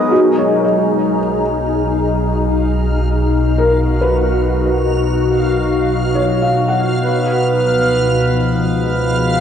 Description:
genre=ambient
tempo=70 BPM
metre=4/4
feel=straight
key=B lydian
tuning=A4 = 441 Hz
part: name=glassy FM pad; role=sustained chords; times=0.0-9.4 s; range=B2 to G#4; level=-16 LUFS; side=left 1 dB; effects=ensemble chorus, built-in reverb, cassette tape
part: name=felt-muted upright piano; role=arpeggios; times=0.0-9.4 s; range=F#4 to F#5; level=-19 LUFS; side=equal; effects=cassette tape, tape echo
part: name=deep rumbling drone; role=bass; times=0.0-9.4 s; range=B1 to C#2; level=-21 LUFS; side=equal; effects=built-in reverb, tube saturation
part: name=hand-pumped harmonium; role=drone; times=0.0-0.2, 7.0-9.4 s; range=B3 to D#5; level=-18 LUFS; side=right 3 dB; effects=cassette tape
part: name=backwards swelling texture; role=texture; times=1.2-9.4 s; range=E#5 to E#6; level=-25 LUFS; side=equal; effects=built-in reverb, cassette tape
room=wet spring reverb, RT60 1.7 s, small room reverb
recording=home recording on cassette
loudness=-13 LUFS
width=side -8 dB against mid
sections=0.1-9.4 A section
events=fade-in on synth texture 0.1-9.4; fade-out on synth drone 0.1-9.4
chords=0.1 Bmaj7; 7.0 C#7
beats=| 0.11 0.99 1.85 2.72 | 3.59 4.45 5.30 6.16 | 7.02 7.88 8.74

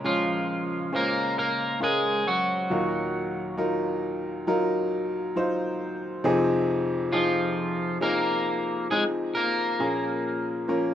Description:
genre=pop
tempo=68 BPM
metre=4/4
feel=straight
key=Bb minor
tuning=A4 = 440 Hz
part: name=clear upright piano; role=accompaniment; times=0.0-10.9 s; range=Eb2 to F5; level=-26 LUFS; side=left 1 dB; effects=none
part: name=electric guitar at the edge of break-up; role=melody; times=0.1-10.9 s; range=F3 to Bb4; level=-26 LUFS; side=equal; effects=none
room=light reverb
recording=rough home demo mix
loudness=-24 LUFS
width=side -10 dB against mid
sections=0.0-10.9 A section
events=none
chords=0.0 Bbm7; 2.7 Ebmadd9; 6.2 Fm7; 9.8 Bbm7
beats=0.04 0.93 1.82 | 2.70 3.59 4.46 5.35 | 6.24 7.12 8.01 8.90 | 9.79 10.69

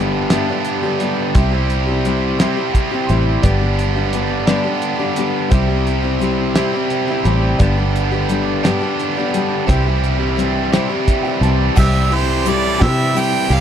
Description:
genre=folk rock and heartland rock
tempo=58 BPM (dotted quarters)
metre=6/8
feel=straight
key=unclear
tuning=A4 = 438 Hz
part: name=dark concert grand piano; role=accompaniment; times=0.0-13.6 s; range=G4 to C6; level=-28 LUFS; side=right 4 dB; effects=none
part: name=picked steel-string acoustic guitar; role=accompaniment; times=0.0-13.6 s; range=G2 to G4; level=-21 LUFS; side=left 6 dB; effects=none
part: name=biting overdriven guitar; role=riff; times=0.0-13.6 s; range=G2 to G4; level=-19 LUFS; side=right 3 dB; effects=none
part: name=fingered electric bass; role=bass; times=0.0-13.6 s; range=G1 to C3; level=-18 LUFS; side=equal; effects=none
part: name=cloth-damped thuddy drum kit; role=drums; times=0.3-13.6 s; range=crash cymbal, hi-hat, kick drum, ride cymbal, snare drum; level=-18 LUFS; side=equal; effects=none
part: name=bright harmonica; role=melody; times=11.8-13.6 s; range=C5 to G5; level=-19 LUFS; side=right 5 dB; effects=none
part: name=tube shaker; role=percussion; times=11.8-13.3 s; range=none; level=-34 LUFS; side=left 30 dB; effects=none
room=little or no reverb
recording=dry, close 1970s-style studio recording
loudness=-14 LUFS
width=side -9 dB against mid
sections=0.0-11.8 A section; 11.8-13.6 B section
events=grand piano fill 2.4-3.4, 6.6-7.6, 10.7-11.8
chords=0.0 G; 1.4 C; 3.4 G; 5.5 C; 7.6 G; 9.7 C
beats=0.31 | 1.35 2.39 | 3.44 4.48 | 5.52 6.56 | 7.60 8.64 | 9.69 10.73 | 11.77 12.80

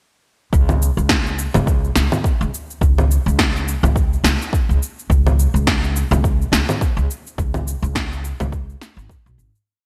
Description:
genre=organic downtempo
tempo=105 BPM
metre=4/4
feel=swing 57% on 16ths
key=unclear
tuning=A4 = 440 Hz
part: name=upright bass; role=bass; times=0.5-9.5 s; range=G#1 to C#2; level=-20 LUFS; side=equal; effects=sidechain pumping
part: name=electronic cabasa, congas and snare drum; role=drums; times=0.5-9.6 s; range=none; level=-23 LUFS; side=equal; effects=overdrive, small room ambience, gated reverb
part: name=electronic kick drum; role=drums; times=0.5-9.2 s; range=none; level=-22 LUFS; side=equal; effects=overdrive, small room ambience
room=light reverb, digital ambience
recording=bright 1980s-style digital production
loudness=-18 LUFS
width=mono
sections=0.5-9.7 groove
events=fade-out 6.6-9.7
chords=none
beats=| 0.53 1.10 1.67 2.24 | 2.81 3.38 3.95 4.53 | 5.10 5.67 6.24 6.81 | 7.38 7.95 8.53 9.10

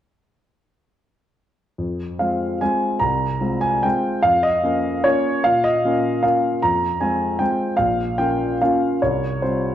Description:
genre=classical, piano waltz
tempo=149 BPM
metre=3/4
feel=uneven beats, rubato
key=F minor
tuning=A4 = 442 Hz
part: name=warm grand piano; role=solo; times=1.8-9.7 s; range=Bb1 to Bb5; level=-18 LUFS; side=equal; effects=none
room=moderate recital hall reverb, RT60 1.4 s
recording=dark, warm production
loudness=-18 LUFS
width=side -11 dB against mid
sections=1.8-9.7 A section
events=none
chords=1.8 Fm; 4.2 Bbm/F; 6.6 Fm; 7.8 Bbm; 9.0 Csus4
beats=| 1.79 2.19 2.61 | 3.02 3.42 3.85 | 4.25 4.64 5.05 | 5.44 5.83 6.23 | 6.62 7.01 7.41 | 7.80 8.19 8.61 | 9.02 9.43

